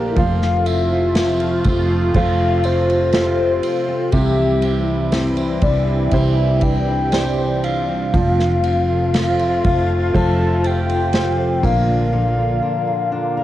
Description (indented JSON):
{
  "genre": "pop ballad",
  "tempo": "60 BPM",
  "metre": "4/4",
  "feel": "straight",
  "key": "F major",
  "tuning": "A4 = 441 Hz",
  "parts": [
    { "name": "clear upright piano", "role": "accompaniment", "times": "0.0-13.4 s", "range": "C3 to D5", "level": "-27 LUFS", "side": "right 3 dB", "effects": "cassette tape" },
    { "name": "sweeping resonant pad", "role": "sustained chords", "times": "0.0-13.4 s", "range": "C3 to G4", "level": "-24 LUFS", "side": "right 2 dB", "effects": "chorus, phaser, cassette tape" },
    { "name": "fingerpicked steel-string acoustic guitar", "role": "arpeggios", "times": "0.0-13.4 s", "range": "Bb2 to C5", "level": "-27 LUFS", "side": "left 4 dB", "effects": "cassette tape" },
    { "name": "woody fretless electric bass", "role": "bass", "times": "0.0-12.6 s", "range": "F1 to C2", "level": "-20 LUFS", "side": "equal", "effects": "none" },
    { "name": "dark French horn section", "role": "second line", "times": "0.1-12.1 s", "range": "D4 to G4", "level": "-23 LUFS", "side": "left 1 dB", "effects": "cassette tape" },
    { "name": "soft octave-layered synth lead", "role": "melody", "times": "0.2-13.4 s", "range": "C5 to A5", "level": "-22 LUFS", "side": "left 2 dB", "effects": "chorus, phaser, cassette tape, tape echo" },
    { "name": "unplugged drum kit", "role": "drums", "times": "0.2-11.9 s", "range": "kick drum, ride cymbal, snare drum", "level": "-24 LUFS", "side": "equal", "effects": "cassette tape" }
  ],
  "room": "small room ambience",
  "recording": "home recording on cassette",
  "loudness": "-15 LUFS",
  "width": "side -13 dB against mid",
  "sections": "0.0-13.4 A section",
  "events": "none",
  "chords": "0.2 F; 4.1 C; 8.1 F; 11.6 Bb"
}